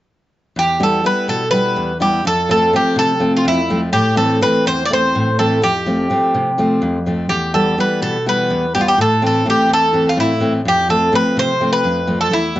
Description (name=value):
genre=greek folk, Greek bouzouki band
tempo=250 BPM (eighths)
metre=7/8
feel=straight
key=unclear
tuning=A4 = 440 Hz
part: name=Greek bouzouki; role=melody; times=0.6-12.6 s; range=E4 to D5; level=-16 LUFS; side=equal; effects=none
part: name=fingerpicked steel-string acoustic guitar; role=accompaniment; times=0.6-12.6 s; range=E2 to E4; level=-17 LUFS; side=left 1 dB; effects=none
room=wet studio reverb, RT60 0.6 s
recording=nothing above 7.7 kHz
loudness=-13 LUFS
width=side -14 dB against mid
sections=0.6-12.6 A section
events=none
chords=0.6 Em; 2.3 F; 3.9 Am; 5.6 F; 7.3 Em; 9.0 Am; 10.7 F